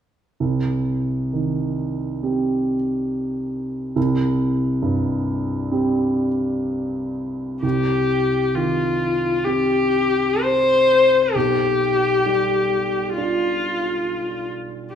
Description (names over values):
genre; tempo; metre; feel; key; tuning
classical, romantic duo for viola and grand piano; 66 BPM; 4/4; uneven beats, rubato; C minor; A4 = 440 Hz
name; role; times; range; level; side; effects
dark baby grand piano; accompaniment; 0.4-14.9 s; B1 to G4; -22 LUFS; right 2 dB; none
rich viola; melody; 7.6-14.5 s; F4 to C5; -18 LUFS; left 3 dB; none
room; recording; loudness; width
wet recital hall reverb, RT60 1.5 s; recorded in a church or concert hall; -18 LUFS; side -8 dB against mid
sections
0.4-7.6 A section; 7.6-14.9 B section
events
none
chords
0.4 Cm; 11.3 G7/B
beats
| 0.40 1.33 2.23 3.10 | 3.97 4.84 5.72 6.65 | 7.64 8.55 9.46 10.43 | 11.35 12.26 13.17 14.06